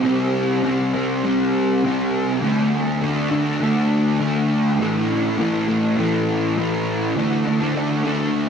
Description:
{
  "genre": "rock",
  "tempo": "101 BPM",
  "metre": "4/4",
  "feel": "straight",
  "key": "unclear",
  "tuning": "A4 = 441 Hz",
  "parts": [
    { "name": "fuzz guitar", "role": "solo", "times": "0.0-8.5 s", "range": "A2 to D4", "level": "-18 LUFS", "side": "equal", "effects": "distortion, analog chorus, tape echo" }
  ],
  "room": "wet plate reverb, RT60 2.3 s",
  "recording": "dreamy mix soaked in reverb",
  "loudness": "-18 LUFS",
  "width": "side -7 dB against mid",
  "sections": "0.0-7.2 A section; 7.2-8.5 B section",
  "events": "none",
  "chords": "0.0 C5; 2.4 D5; 4.8 A5; 7.2 D5"
}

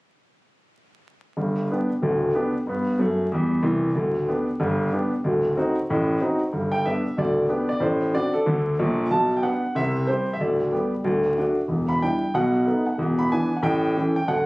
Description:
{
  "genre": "jazz, stride piano",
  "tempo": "186 BPM",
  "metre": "4/4",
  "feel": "swing 61% on 8ths",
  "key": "G major",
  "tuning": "A4 = 440 Hz",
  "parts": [
    { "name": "clear grand piano", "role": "solo", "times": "1.4-14.5 s", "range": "D1 to B5", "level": "-20 LUFS", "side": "equal", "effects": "none" }
  ],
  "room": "moderate studio reverb, RT60 0.6 s",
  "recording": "recorded on a phone in the room, studio ambience, vinyl crackle",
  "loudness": "-20 LUFS",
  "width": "side -22 dB against mid",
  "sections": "1.4-6.5 A section; 6.5-14.5 B section",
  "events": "none",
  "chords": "1.4 G; 3.9 G/D; 5.2 D7b9; 6.5 G; 7.8 D7/A; 9.1 G/B; 9.8 C; 10.4 G/D; 11.0 D; 11.7 Em7; 12.3 B7; 13.0 E5; 13.6 A7"
}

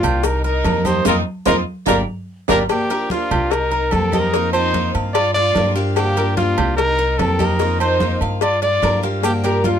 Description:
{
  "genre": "latin, Cuban son and guajira",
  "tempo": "147 BPM",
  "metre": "4/4",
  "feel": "straight",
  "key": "G minor",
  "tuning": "A4 = 440 Hz",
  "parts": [
    { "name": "warm trumpet", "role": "melody", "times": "0.0-9.8 s", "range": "F4 to D5", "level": "-20 LUFS", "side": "equal", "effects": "none" },
    { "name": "clear studio violin section", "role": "second line", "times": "0.0-9.8 s", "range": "Bb3 to G4", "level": "-26 LUFS", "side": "left 1 dB", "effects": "none" },
    { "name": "picked steel-string acoustic guitar", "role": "accompaniment", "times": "0.0-9.8 s", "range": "D3 to G4", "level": "-25 LUFS", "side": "left 2 dB", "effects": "none" },
    { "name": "Cuban tres", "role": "arpeggios", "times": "0.0-9.8 s", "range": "Eb4 to F5", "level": "-24 LUFS", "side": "right 2 dB", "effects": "none" },
    { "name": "upright bass", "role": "bass", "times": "0.0-9.8 s", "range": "G1 to G2", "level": "-22 LUFS", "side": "equal", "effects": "none" },
    { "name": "agogo bells and timbales", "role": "percussion", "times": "0.0-9.6 s", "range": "none", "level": "-26 LUFS", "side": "right 6 dB", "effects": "none" },
    { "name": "congas", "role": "percussion", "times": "0.0-9.8 s", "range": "none", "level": "-26 LUFS", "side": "equal", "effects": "none" },
    { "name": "cowbell", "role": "percussion", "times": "0.0-9.8 s", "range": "none", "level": "-25 LUFS", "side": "left 16 dB", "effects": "none" },
    { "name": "maracas", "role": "percussion", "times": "0.0-2.6, 9.2-9.8 s", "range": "none", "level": "-35 LUFS", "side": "left 8 dB", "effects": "none" }
  ],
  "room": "little or no reverb",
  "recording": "close, detailed microphones",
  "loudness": "-15 LUFS",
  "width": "side -8 dB against mid",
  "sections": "0.0-2.7 A section; 2.7-9.8 A section",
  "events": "band accent 1.1-2.7; drum fill 2.1-2.7",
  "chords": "0.2 Cm7; 1.1 F7sus4; 1.9 Gm7; 3.5 Cm7; 4.3 F7sus4; 5.2 Gm7; 6.8 Cm7; 7.6 F7sus4; 8.4 Gm7"
}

